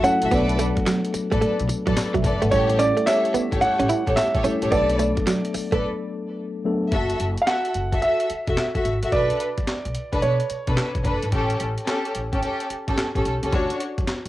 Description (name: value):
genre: R&B, new jack swing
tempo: 109 BPM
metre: 4/4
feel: swing 65% on 16ths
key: B minor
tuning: A4 = 440 Hz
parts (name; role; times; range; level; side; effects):
- warm grand piano; melody; 0.0-11.0 s; C#5 to F#5; -24 LUFS; right 2 dB; cassette tape, tape echo
- mellow tine electric piano; accompaniment; 0.0-6.9 s; F#3 to F#5; -26 LUFS; left 3 dB; slow stereo tremolo, cassette tape
- direct-recorded clean electric guitar; riff; 0.0-5.8 s; F#3 to E4; -24 LUFS; right 3 dB; analog chorus, cassette tape
- warm studio string section; stabs; 0.0-13.8 s; C#4 to E5; -26 LUFS; left 1 dB; cassette tape
- upright bass; bass; 0.0-14.3 s; E1 to B2; -27 LUFS; equal; none
- breakbeat sampler-style drum kit; drums; 0.0-14.3 s; handclaps, hi-hat, kick drum, snare drum, tambourine; -27 LUFS; equal; cassette tape
room: light reverb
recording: home recording on cassette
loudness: -20 LUFS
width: side -15 dB against mid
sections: 0.0-6.9 A section; 6.9-14.3 B section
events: break 5.8-6.9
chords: 0.3 Bm7; 2.5 A7; 4.7 Bm7; 6.9 F#m7; 9.1 Bm7; 11.3 A7; 13.5 Dmaj7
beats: | 0.32 0.86 1.42 1.97 | 2.52 3.07 3.62 4.17 | 4.72 5.27 5.82 6.37 | 6.92 7.47 8.02 8.57 | 9.12 9.67 10.22 10.77 | 11.32 11.88 12.43 12.98 | 13.53 14.08